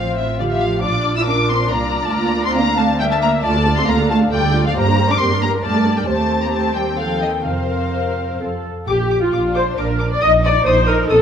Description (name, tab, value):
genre	quick classical-period movement for string orchestra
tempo	136 BPM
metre	3/4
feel	rubato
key	Bb major from 3.4 s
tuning	A4 = 442 Hz
part	muted studio violin section	melody	0.0-11.2 s	C5 to E6	-22 LUFS	left 4 dB	none
part	muted studio violin section	second line	0.0-11.2 s	F4 to G5	-23 LUFS	left 4 dB	none
part	muted studio viola section	accompaniment	0.0-11.2 s	A3 to Eb5	-20 LUFS	equal	none
part	muted studio cello section	bass	0.0-11.2 s	C3 to E4	-23 LUFS	right 3 dB	none
part	muted studio double bass section	bass	0.0-11.2 s	A1 to G2	-21 LUFS	right 3 dB	none
room	moderate recital hall reverb, RT60 1.4 s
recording	none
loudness	-15 LUFS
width	side -8 dB against mid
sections	0.0-8.9 A section; 8.9-11.2 B section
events	none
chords	0.0 F/A; 0.8 Bb; 2.1 Bb/D; 4.8 Gm; 6.1 Cm/Eb; 7.5 Fsus4; 8.4 F; 8.9 Bb; 10.2 Eb5/Bb